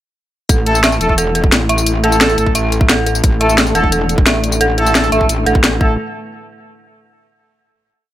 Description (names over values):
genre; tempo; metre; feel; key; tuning
dark technical drum and bass; 175 BPM; 4/4; straight; unclear; A4 = 440 Hz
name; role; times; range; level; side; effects
dark analog pad; sustained chords; 0.5-6.0 s; A3 to A5; -23 LUFS; left 1 dB; chorus, vintage 12-bit sampler grit, sidechain pumping
dark detuned synth bell; arpeggios; 0.5-6.0 s; A4 to E5; -18 LUFS; right 2 dB; chorus, sidechain pumping, tape echo
metallic wobble bass; bass; 0.5-6.0 s; E1 to A1; -18 LUFS; equal; chorus, tube saturation, sidechain pumping
drum and bass drum kit; drums; 0.5-5.7 s; hi-hat, snare drum, tambourine; -15 LUFS; left 1 dB; overdrive
electronic kick drum; drums; 0.5-5.9 s; none; -14 LUFS; equal; none
warm brass ensemble; stabs; 0.7-5.9 s; A3 to A4; -19 LUFS; equal; tape echo
room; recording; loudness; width
light reverb; none; -11 LUFS; side -13 dB against mid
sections
0.5-6.0 drop; 6.0-7.4 final hit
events
drop 0.5-6.0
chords
0.5 A5; 6.0 N.C.